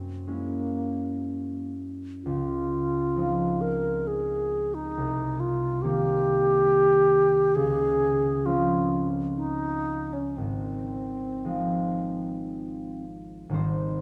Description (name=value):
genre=classical, impressionist duo for alto flute and harp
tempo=56-71 BPM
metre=3/4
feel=rubato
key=Ab mixolydian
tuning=A4 = 439 Hz
part: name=concert harp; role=accompaniment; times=0.0-14.0 s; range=Ab1 to C5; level=-31 LUFS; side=equal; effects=none
part: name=wooden-headed alto flute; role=melody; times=0.3-13.0 s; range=Bb3 to Bb4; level=-28 LUFS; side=equal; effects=none
room=wet scoring stage reverb, RT60 1.8 s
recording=dark, warm production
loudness=-26 LUFS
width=mono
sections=0.0-13.5 A section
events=none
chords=0.0 Gb9; 2.3 Dbmaj9; 5.0 Cm7; 7.6 Dbmaj7; 10.4 Ab6